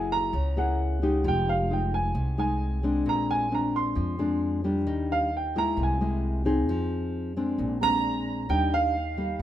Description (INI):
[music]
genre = bossa nova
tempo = 132 BPM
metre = 4/4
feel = straight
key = Eb major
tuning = A4 = 440 Hz
[part]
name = warm baby grand piano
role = melody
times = 0.0-9.4 s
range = F5 to C6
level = -28 LUFS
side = right 4 dB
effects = none
[part]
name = nylon-string guitar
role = accompaniment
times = 0.0-9.4 s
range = Bb2 to Ab4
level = -28 LUFS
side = left 2 dB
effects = none
[part]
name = upright bass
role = bass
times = 0.0-9.4 s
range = F1 to F2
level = -29 LUFS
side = equal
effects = none
[part]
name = flute section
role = second line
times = 7.8-9.4 s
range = F5 to Bb5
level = -35 LUFS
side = right 5 dB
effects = none
[sound]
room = light reverb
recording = minimal, uncompressed stereo recording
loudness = -24 LUFS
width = side -12 dB against mid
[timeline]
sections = 0.0-8.5 A section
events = grand piano solo 0.0-8.5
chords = 0.0 Gb9; 1.2 Fm9; 3.1 Bb9; 4.9 Ebmaj7; 5.8 C7b13; 6.7 Fm7; 7.6 Bb9; 8.5 Ebmaj7